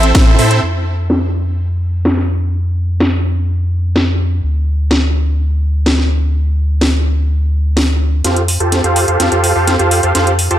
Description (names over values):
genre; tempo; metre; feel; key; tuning
EDM, festival progressive house; 126 BPM; 4/4; straight; unclear; A4 = 440 Hz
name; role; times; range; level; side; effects
supersaw chords; riff; 0.0-0.6, 8.2-10.6 s; C4 to A5; -14 LUFS; right 1 dB; sidechain pumping, low-pass filter, tape echo
saturated sub bass; bass; 0.0-10.6 s; A1 to A2; -14 LUFS; equal; sidechain pumping
house drum kit; drums; 0.0-10.6 s; hi-hat, ride cymbal, snare drum; -17 LUFS; equal; overdrive, low-pass filter on hats, low-pass filter on snare, low-pass filter on cymbals, low-pass filter on room
room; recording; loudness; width
digital ambience; none; -12 LUFS; side -12 dB against mid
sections
0.6-8.2 A section; 8.2-10.6 B section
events
band accent 0.1; filter sweep on drum 0.6-8.2; build-up 8.2-10.6; drum fill 8.2-10.6; filter sweep on supersaw synth 8.2-10.6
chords
0.0 Am; 0.6 N.C.; 8.2 Fadd9